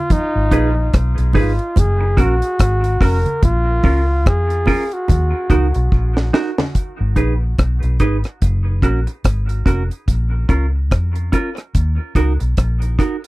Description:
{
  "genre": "dub reggae",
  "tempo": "72 BPM",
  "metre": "4/4",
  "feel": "swing 59% on 16ths",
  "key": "G# dorian",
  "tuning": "A4 = 436 Hz",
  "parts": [
    { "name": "breathy flugelhorn", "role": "melody", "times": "0.0-6.3 s", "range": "D#4 to A#4", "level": "-22 LUFS", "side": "equal", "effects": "dub echo" },
    { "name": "deep reggae drum kit", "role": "drums", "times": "0.1-13.3 s", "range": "hi-hat, kick drum, rim click, snare drum", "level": "-16 LUFS", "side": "equal", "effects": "none" },
    { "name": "congas", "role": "percussion", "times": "0.1-6.7 s", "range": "none", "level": "-25 LUFS", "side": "right 3 dB", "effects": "dub echo" },
    { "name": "vintage muted fingered electric bass", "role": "bass", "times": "0.4-13.0 s", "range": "E#1 to E#2", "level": "-17 LUFS", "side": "equal", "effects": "none" },
    { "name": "clean electric guitar", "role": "accompaniment", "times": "0.5-13.2 s", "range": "C#4 to B4", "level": "-22 LUFS", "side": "right 3 dB", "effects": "dub echo" }
  ],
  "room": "little or no reverb",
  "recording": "dry, close 1970s-style studio recording",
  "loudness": "-14 LUFS",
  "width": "side -20 dB against mid",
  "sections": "0.0-6.8 A section; 6.8-13.3 B section",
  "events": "drum fill 5.9-6.8",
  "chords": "0.1 G#m; 1.8 F#; 3.4 A#m; 5.1 D#m; 6.8 G#m; 8.4 F#; 10.1 A#m; 11.7 D#m",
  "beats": "| 0.11 0.94 1.77 2.60 | 3.43 4.26 5.09 5.92 | 6.75 7.58 8.41 9.25 | 10.08 10.91 11.74 12.58"
}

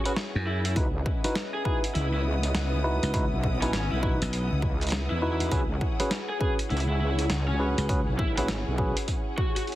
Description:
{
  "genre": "glitch hop",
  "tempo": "101 BPM",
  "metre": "4/4",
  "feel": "swing 63% on 16ths",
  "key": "C# minor",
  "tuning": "A4 = 440 Hz",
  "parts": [
    { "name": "warm analog pad", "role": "sustained chords", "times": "0.0-9.8 s", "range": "C#4 to F#5", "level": "-37 LUFS", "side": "equal", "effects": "chorus, vintage 12-bit sampler grit, sidechain pumping" },
    { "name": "warm studio string section", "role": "texture", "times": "0.0-9.8 s", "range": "B3 to D#6", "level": "-38 LUFS", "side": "equal", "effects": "sidechain pumping" },
    { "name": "lead guitar through a small cranked amp", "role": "melody", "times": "0.1-9.6 s", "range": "C#4 to G#4", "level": "-34 LUFS", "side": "left 1 dB", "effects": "overdrive, ping-pong delay" },
    { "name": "tine electric piano", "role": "stabs", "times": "0.1-8.9 s", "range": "C#4 to B4", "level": "-32 LUFS", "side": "equal", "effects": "vintage 12-bit sampler grit, sidechain pumping, ping-pong delay" },
    { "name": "boom bap sampler-style drum kit", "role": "drums", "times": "0.1-9.8 s", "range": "hi-hat, snare drum", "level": "-32 LUFS", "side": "equal", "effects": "none" },
    { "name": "slap bass", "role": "bass", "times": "0.4-8.0 s", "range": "B1 to F#2", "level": "-28 LUFS", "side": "equal", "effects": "none" },
    { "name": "wobble bass", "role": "bass", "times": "0.8-8.9 s", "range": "G#1 to E2", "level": "-28 LUFS", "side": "equal", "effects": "chorus, overdrive" },
    { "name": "electronic kick drum", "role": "drums", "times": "0.8-9.5 s", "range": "none", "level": "-28 LUFS", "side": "equal", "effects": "none" }
  ],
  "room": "light reverb, digital ambience",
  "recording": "heavily compressed radio sound",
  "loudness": "-24 LUFS",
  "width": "side -14 dB against mid",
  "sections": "0.0-9.8 A section",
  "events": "none",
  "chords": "0.0 C#m11",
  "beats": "0.17 | 0.76 1.36 1.95 2.54 | 3.14 3.73 4.33 4.92 | 5.51 6.11 6.70 7.30 | 7.89 8.48 9.08 9.67"
}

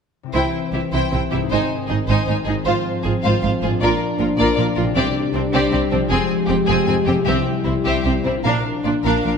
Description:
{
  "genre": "cinematic, heroic adventure film score",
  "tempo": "104 BPM (dotted quarters)",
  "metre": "6/8",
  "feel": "straight",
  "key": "C mixolydian",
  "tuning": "A4 = 440 Hz",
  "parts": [
    { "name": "concert harp", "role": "arpeggios", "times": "0.2-9.4 s", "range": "Ab2 to C5", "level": "-26 LUFS", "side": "left 4 dB", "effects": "none" },
    { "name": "warm symphonic violin section", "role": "second line", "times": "0.3-9.3 s", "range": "D4 to C5", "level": "-25 LUFS", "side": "left 2 dB", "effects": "none" },
    { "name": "rich symphonic viola section", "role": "accompaniment", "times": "0.3-9.3 s", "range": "C4 to F4", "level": "-24 LUFS", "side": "right 3 dB", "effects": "none" },
    { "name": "mellow French horn section", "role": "sustained chords", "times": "0.3-9.4 s", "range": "Eb3 to G4", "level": "-23 LUFS", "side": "left 4 dB", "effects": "none" },
    { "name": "rich symphonic double bass section", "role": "bass", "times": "0.3-9.3 s", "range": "F1 to C2", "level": "-25 LUFS", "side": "right 4 dB", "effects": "none" },
    { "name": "warm symphonic cello section", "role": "bass", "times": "0.3-9.3 s", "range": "F2 to C3", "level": "-25 LUFS", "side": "right 4 dB", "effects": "none" },
    { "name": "warm symphonic violin section", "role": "melody", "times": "0.4-9.3 s", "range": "Bb4 to Ab5", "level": "-27 LUFS", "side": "left 3 dB", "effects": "none" },
    { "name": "timpani", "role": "percussion", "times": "5.0-7.8 s", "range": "C3", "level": "-30 LUFS", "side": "equal", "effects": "none" }
  ],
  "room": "moderate scoring stage reverb, RT60 2.0 s",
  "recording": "none",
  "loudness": "-17 LUFS",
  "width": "side -6 dB against mid",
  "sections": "0.3-9.4 A section",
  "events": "build-up 0.3-9.4",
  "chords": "0.3 C; 1.5 Ab; 2.7 Fm/Ab; 3.8 Bb; 5.0 Csus2; 6.1 Fmadd9; 7.3 C; 8.4 Bb",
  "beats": "| 0.35 0.93 | 1.51 2.08 | 2.66 3.24 | 3.82 4.39 | 4.96 5.53 | 6.10 6.68 | 7.26 7.85 | 8.45 9.05"
}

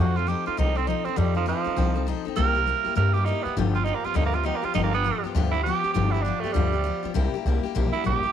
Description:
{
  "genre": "rockabilly",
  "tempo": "201 BPM",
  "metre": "4/4",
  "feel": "swing 62% on 8ths",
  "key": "unclear",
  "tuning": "A4 = 440 Hz",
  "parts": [
    { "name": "raspy tenor saxophone", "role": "melody", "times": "0.0-8.3 s", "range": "F3 to Bb4", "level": "-26 LUFS", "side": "right 8 dB", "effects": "none" },
    { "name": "picked steel-string acoustic guitar", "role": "accompaniment", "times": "0.0-8.3 s", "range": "G2 to A4", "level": "-28 LUFS", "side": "left 10 dB", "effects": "none" },
    { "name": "upright bass", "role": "bass", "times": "0.0-8.3 s", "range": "G1 to G2", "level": "-25 LUFS", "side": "equal", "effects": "none" }
  ],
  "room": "light reverb, studio reverb",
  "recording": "1960s-style stereo with parts hard left and right",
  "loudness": "-22 LUFS",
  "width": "side -9 dB against mid",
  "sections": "0.0-8.3 A section",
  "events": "tenor saxophone solo 0.0-8.3",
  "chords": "0.0 F7; 2.4 C7; 3.6 G7; 7.2 C7",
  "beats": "0.28 0.58 0.88 | 1.18 1.48 1.77 2.07 | 2.37 2.67 2.97 3.27 | 3.57 3.86 4.16 4.46 | 4.76 5.06 5.36 5.66 | 5.96 6.26 6.56 6.86 | 7.16 7.46 7.76 8.06"
}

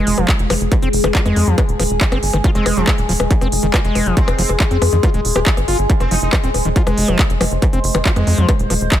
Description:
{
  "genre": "psychedelic trance",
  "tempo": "139 BPM",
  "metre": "4/4",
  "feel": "straight",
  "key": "F minor",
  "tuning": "A4 = 442 Hz",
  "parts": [
    { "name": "overtone-sweeping drone", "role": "sustained chords", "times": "0.0-9.0 s", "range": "Ab3 to C5", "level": "-22 LUFS", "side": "left 2 dB", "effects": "chorus, built-in reverb, phaser, sidechain pumping" },
    { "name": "overdriven acid bass", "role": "riff", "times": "0.0-8.7 s", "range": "Eb3 to G4", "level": "-22 LUFS", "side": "equal", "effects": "distortion, auto-pan, sidechain pumping, dub echo" },
    { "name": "tight sequencer bass", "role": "bass", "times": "0.0-8.9 s", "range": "Eb1 to F2", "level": "-18 LUFS", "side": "equal", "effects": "none" },
    { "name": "techno drum kit", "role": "drums", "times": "0.1-9.0 s", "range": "handclaps, hi-hat, percussion blips", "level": "-20 LUFS", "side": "left 2 dB", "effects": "none" },
    { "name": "electronic kick drum", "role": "drums", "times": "0.3-9.0 s", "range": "none", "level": "-16 LUFS", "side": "equal", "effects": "distortion" },
    { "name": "metallic wobble bass", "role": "second line", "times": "2.6-6.3 s", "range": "C4 to Eb4", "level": "-30 LUFS", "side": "left 1 dB", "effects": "distortion, lush chorus, sidechain pumping, high-pass filter, ping-pong delay" }
  ],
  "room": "digital ambience",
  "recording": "none",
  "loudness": "-13 LUFS",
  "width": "side -11 dB against mid",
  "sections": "0.0-9.0 A section",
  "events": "none",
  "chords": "0.0 F5",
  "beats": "0.28 | 0.72 1.15 1.58 2.01 | 2.44 2.87 3.31 3.74 | 4.17 4.60 5.03 5.46 | 5.90 6.33 6.76 7.19 | 7.62 8.05 8.49 8.92"
}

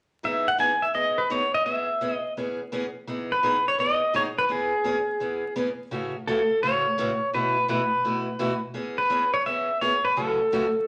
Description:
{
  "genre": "country",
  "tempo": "169 BPM",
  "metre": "4/4",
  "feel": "swing 65% on 8ths",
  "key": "E major",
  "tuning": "A4 = 445 Hz",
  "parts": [
    { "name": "pedal steel guitar", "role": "melody", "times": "0.2-10.9 s", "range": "G#4 to G#5", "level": "-25 LUFS", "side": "equal", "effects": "none" },
    { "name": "picked steel-string acoustic guitar", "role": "accompaniment", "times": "0.2-10.6 s", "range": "F#2 to G#4", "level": "-32 LUFS", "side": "equal", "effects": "none" }
  ],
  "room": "wet club reverb, RT60 0.8 s",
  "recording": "vinyl crackle",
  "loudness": "-25 LUFS",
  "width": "mono",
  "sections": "0.2-3.1 A section; 3.1-10.9 B section",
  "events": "none",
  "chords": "0.2 Emaj7; 1.7 C#m7/E; 3.1 Emaj7; 4.5 C#m7/E; 5.9 A6; 7.3 B7sus4; 8.7 E6; 10.2 F#m7",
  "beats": "| 0.24 0.59 0.95 1.30 | 1.66 2.01 2.37 2.72 | 3.08 3.43 3.79 4.14 | 4.50 4.85 5.21 5.56 | 5.92 6.27 6.62 6.98 | 7.33 7.69 8.04 8.39 | 8.75 9.10 9.46 9.81 | 10.16 10.52"
}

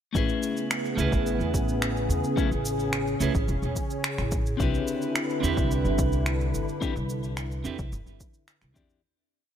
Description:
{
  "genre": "sunset chillout",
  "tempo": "108 BPM",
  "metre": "4/4",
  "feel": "straight",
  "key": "A major",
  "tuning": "A4 = 440 Hz",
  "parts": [
    { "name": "clean electric guitar", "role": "accompaniment", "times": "0.1-9.0 s", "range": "A3 to D5", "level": "-30 LUFS", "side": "moving between left 8 dB and right 7 dB", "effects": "auto-pan, digital delay" },
    { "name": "upright bass", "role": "bass", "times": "0.1-9.0 s", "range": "E1 to E2", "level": "-29 LUFS", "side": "equal", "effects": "none" },
    { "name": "electronic cabasa and finger snaps", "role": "drums", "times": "0.1-9.0 s", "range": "none", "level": "-33 LUFS", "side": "equal", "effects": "none" },
    { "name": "electronic kick drum", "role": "drums", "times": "0.1-8.9 s", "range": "none", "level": "-28 LUFS", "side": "equal", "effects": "none" },
    { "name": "soft string machine", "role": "sustained chords", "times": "0.5-9.0 s", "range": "C#3 to B4", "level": "-30 LUFS", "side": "equal", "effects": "ensemble chorus" }
  ],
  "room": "light reverb, digital ambience",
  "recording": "none",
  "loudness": "-24 LUFS",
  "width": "side -9 dB against mid",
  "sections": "0.1-9.0 groove",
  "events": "fade-out 6.1-9.0",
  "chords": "0.1 Amaj9; 4.6 Cmaj9",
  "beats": "| 0.15 0.71 1.26 1.82 | 2.37 2.93 3.48 4.04 | 4.59 5.15 5.71 6.26 | 6.82 7.37 7.93 8.48"
}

